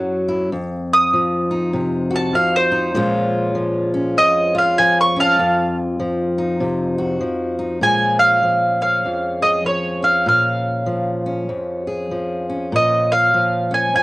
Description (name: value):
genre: acoustic country blues, solo or duo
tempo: 98 BPM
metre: 4/4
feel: swing 61% on 8ths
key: Bb minor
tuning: A4 = 440 Hz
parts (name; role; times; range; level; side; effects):
- mandolin; melody; 0.0-14.0 s; C5 to Eb6; -16 LUFS; right 1 dB; none
- fingerpicked steel-string acoustic guitar; accompaniment; 0.0-14.0 s; F2 to Ab4; -20 LUFS; left 1 dB; none
room: moderate booth ambience, RT60 0.2 s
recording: home recording on cassette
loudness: -16 LUFS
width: side -20 dB against mid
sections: 0.0-7.8 A section; 7.8-14.0 B section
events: mandolin solo 0.0-7.8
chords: 0.0 Gb5; 0.5 F5; 3.0 Bbm7; 5.4 F5; 7.8 Bbm7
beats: | 0.52 1.13 1.74 2.34 | 2.95 3.56 4.17 4.78 | 5.38 5.99 6.60 7.21 | 7.82 8.43 9.04 9.65 | 10.27 10.88 11.49 12.11 | 12.72 13.33 13.94